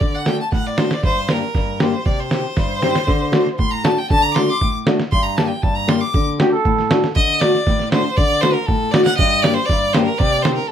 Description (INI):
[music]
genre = klezmer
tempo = 118 BPM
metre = 2/4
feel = straight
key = D phrygian dominant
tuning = A4 = 438 Hz
[part]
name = clear violin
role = melody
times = 0.0-10.7 s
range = A4 to D6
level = -20 LUFS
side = equal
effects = none
[part]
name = nylon-string guitar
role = accompaniment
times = 0.0-10.6 s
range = G2 to G4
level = -20 LUFS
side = left 1 dB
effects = none
[part]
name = lo-fi sampler-style drum kit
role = drums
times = 0.0-10.6 s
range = kick drum, snare drum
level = -19 LUFS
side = right 1 dB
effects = none
[part]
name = warm trombone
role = second line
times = 6.4-7.1 s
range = G4 to A4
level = -20 LUFS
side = right 3 dB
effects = none
[sound]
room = moderate studio reverb, RT60 0.7 s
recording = none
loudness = -15 LUFS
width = side -9 dB against mid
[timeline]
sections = 0.0-7.2 A section; 7.2-10.7 B section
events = violin solo 0.0-7.2; drum fill 2.6-3.1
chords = 0.0 D; 1.0 Gm; 2.1 Cm; 3.1 D; 5.1 Gm; 6.1 D; 9.2 Gm; 10.2 Cm